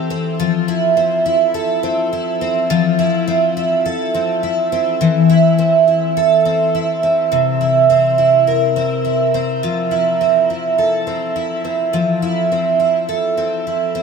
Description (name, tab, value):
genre	dream pop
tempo	104 BPM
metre	4/4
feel	straight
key	F major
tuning	A4 = 440 Hz
part	picked twelve-string acoustic guitar	solo	0.0-14.0 s	C3 to Bb4	-14 LUFS	right 1 dB	analog chorus, ping-pong delay
room	wet shimmer reverb, RT60 7.0 s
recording	none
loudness	-13 LUFS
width	side -5 dB against mid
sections	0.0-9.6 A section; 9.6-14.0 B section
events	none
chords	0.4 Fmaj7; 5.0 Am/E; 7.3 C7; 9.6 Fmaj7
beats	| 0.39 0.97 1.55 2.12 | 2.70 3.28 3.85 4.43 | 5.01 5.58 6.16 6.74 | 7.32 7.89 8.47 9.05 | 9.62 10.20 10.78 11.35 | 11.93 12.51 13.09 13.66